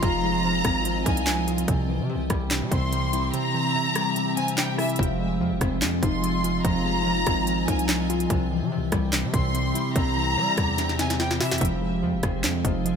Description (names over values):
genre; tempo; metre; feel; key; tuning
hip hop, drill; 145 BPM; 4/4; half-time; F minor; A4 = 440 Hz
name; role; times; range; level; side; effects
clear studio violin section; second line; 0.0-11.6 s; E5 to C6; -28 LUFS; equal; digital delay
muted felt-like synth keys; accompaniment; 0.0-13.0 s; C3 to F4; -28 LUFS; left 1 dB; chorus, low-pass filter
granular cloud pad; sustained chords; 0.0-13.0 s; C4 to Ab5; -33 LUFS; left 1 dB; built-in reverb
concert harp; arpeggios; 0.0-13.0 s; C3 to Ab3; -29 LUFS; equal; low-pass filter, digital delay
distorted 808-style bass; bass; 0.0-13.0 s; F1 to G3; -30 LUFS; equal; distortion
drill drum kit; drums; 0.0-13.0 s; handclaps, hi-hat, kick drum, rim click, snare drum; -26 LUFS; equal; none
room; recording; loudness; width
light reverb, digital ambience; none; -22 LUFS; side -7 dB against mid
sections
0.0-11.6 A section; 11.6-13.0 A section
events
kick muted 3.3-5.0; drum fill 10.8-11.6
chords
0.0 Fm7; 1.7 C; 5.0 Fm7; 8.3 C; 11.6 Fm7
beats
| 0.03 0.44 0.85 1.27 | 1.68 2.10 2.51 2.92 | 3.34 3.75 4.16 4.58 | 4.99 5.41 5.82 6.23 | 6.65 7.06 7.47 7.89 | 8.30 8.71 9.13 9.54 | 9.96 10.37 10.78 11.20 | 11.61 12.03 12.44 12.85